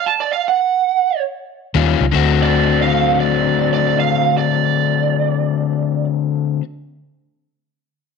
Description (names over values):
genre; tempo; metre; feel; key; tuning
electric blues shuffle; 153 BPM; 4/4; swing 66% on 8ths; D mixolydian; A4 = 438 Hz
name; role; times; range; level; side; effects
lead guitar through a small cranked amp; melody; 0.0-6.0 s; D5 to A5; -18 LUFS; right 11 dB; overdrive
overdriven electric guitar; riff; 1.7-6.6 s; D3 to F#4; -16 LUFS; left 11 dB; none
vintage muted fingered electric bass; bass; 1.7-6.6 s; Db2 to Eb2; -19 LUFS; equal; none
room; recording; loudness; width
moderate echo chamber reverb, RT60 1.3 s, digital ambience; 1960s-style stereo with parts hard left and right; -14 LUFS; side -5 dB against mid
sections
0.0-2.1 A section; 2.1-5.3 B section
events
stop 0.0-1.7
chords
0.0 N.C.; 1.7 Eb9; 2.1 D7